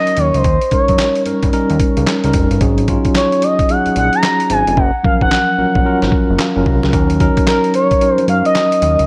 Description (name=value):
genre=R&B, new jack swing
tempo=111 BPM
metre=4/4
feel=swing 63% on 16ths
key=Eb minor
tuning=A4 = 440 Hz
part: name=expressive synth lead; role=melody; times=0.0-9.1 s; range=Bb4 to Bb5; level=-18 LUFS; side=equal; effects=chorus, tape echo
part: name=tine electric piano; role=accompaniment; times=0.0-9.1 s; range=F3 to Bb5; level=-19 LUFS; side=equal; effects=none
part: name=dusty soul sampler-style drum kit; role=drums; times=0.1-9.1 s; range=handclaps, hi-hat, kick drum, snare drum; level=-20 LUFS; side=equal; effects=none
part: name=fat analog bass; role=bass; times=0.2-9.1 s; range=F1 to G2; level=-20 LUFS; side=equal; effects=none
room=light reverb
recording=none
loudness=-14 LUFS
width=mono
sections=0.0-9.1 A section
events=hi-hats muted 4.8-6.9; tine electric piano fill 6.1-6.9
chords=0.4 Eb7; 2.6 Ab7sus4; 4.8 Gbmaj7; 6.9 Ebm7